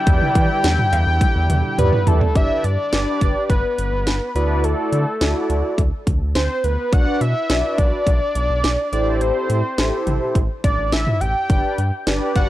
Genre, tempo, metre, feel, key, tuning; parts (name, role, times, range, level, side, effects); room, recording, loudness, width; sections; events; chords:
synth-pop; 105 BPM; 4/4; straight; G major; A4 = 435 Hz
fat analog lead; melody; 0.0-12.5 s; A4 to G5; -22 LUFS; equal; phaser, tape echo
sweeping resonant pad; sustained chords; 0.0-2.3 s; D3 to E4; -29 LUFS; right 1 dB; chorus
mellow synth brass; accompaniment; 0.1-12.5 s; D4 to D5; -24 LUFS; right 1 dB; chorus
round analog bass; bass; 0.1-12.5 s; G1 to E3; -21 LUFS; equal
house drum kit; drums; 0.1-12.5 s; cowbell, hi-hat, kick drum, snare drum, toms; -19 LUFS; equal
little or no reverb; dry, gritty hardware recording, cassette tape; -16 LUFS; side -14 dB against mid
0.0-2.4 A section; 2.4-12.5 B section
drum fill 1.2-2.4
0.0 Em7; 2.4 G; 4.4 Dadd9; 6.9 Bm; 8.9 Am7; 11.5 G